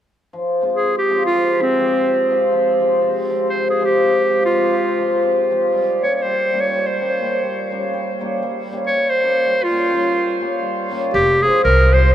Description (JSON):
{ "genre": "balkan folk, Balkan wedding band", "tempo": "free time", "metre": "none", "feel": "none", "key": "F minor", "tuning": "A4 = 439 Hz", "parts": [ { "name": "cimbalom", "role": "accompaniment", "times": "0.3-12.1 s", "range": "C3 to G4", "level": "-18 LUFS", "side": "equal", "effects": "none" }, { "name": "bright clarinet", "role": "melody", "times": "0.7-12.1 s", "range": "C4 to Db5", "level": "-18 LUFS", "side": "equal", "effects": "none" }, { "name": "upright bass", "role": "bass", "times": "11.1-12.1 s", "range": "F1 to C2", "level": "-15 LUFS", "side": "equal", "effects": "none" } ], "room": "wet huge ambient reverb, RT60 7.4 s", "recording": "dreamy mix soaked in reverb", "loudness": "-15 LUFS", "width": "side -10 dB against mid", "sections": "0.3-11.1 A section; 11.1-12.1 B section", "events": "none", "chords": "0.3 Fm; 5.7 Gdim; 11.1 Fm" }